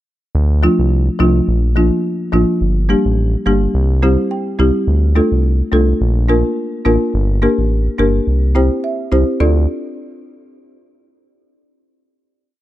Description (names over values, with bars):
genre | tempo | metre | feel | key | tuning
dancehall | 106 BPM | 4/4 | swing 56% on 16ths | D minor | A4 = 440 Hz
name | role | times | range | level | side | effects
round analog bass | bass | 0.3-9.7 s | G1 to D2 | -14 LUFS | equal | none
folk marimba with medium mallets | accompaniment | 0.6-9.7 s | F3 to G5 | -16 LUFS | equal | none
room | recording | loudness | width
small room ambience | dry, gritty hardware recording, transformer saturation | -13 LUFS | side -14 dB against mid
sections
0.3-9.4 verse; 9.4-11.7 final chord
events
marimba fill 3.7-4.9, 8.3-9.4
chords
0.3 Dm; 1.5 Bb; 2.6 Gm; 3.7 C; 4.9 Dm; 6.0 Bb; 7.1 Gm; 8.3 C; 9.4 N.C.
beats
| 0.35 0.91 1.48 2.04 | 2.61 3.18 3.74 4.31 | 4.88 5.44 6.01 6.57 | 7.14 7.71 8.27 8.84 | 9.40